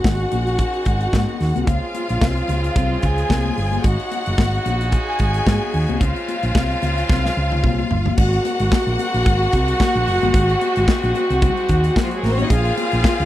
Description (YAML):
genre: disco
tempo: 111 BPM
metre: 4/4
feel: swing 56% on 16ths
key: unclear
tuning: A4 = 438 Hz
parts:
  - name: clear symphonic string section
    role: second line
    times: 0.0-13.3 s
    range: F3 to Ab5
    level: -23 LUFS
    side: left 1 dB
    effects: none
  - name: muted French horn section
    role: sustained chords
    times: 0.0-13.3 s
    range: C3 to Ab4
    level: -25 LUFS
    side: right 1 dB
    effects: none
  - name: hollow-body short-scale fingered electric bass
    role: bass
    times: 0.0-13.3 s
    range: Gb1 to Ab2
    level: -20 LUFS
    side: equal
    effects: none
  - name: modern studio drum kit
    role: drums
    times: 0.0-13.3 s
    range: crash cymbal, hi-hat, kick drum, snare drum, toms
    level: -20 LUFS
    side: equal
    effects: none
  - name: congas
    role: percussion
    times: 0.1-13.2 s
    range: none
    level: -28 LUFS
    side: left 10 dB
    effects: none
room: little or no reverb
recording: dry, close 1970s-style studio recording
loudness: -16 LUFS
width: side -14 dB against mid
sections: 0.0-8.2 A section; 8.2-13.3 B section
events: drum fill 7.1-8.2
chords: 0.0 Ab7sus4; 1.7 Dbmaj7; 3.8 Ab7sus4; 6.0 Dbmaj7; 8.2 Ab9; 12.5 Bbm9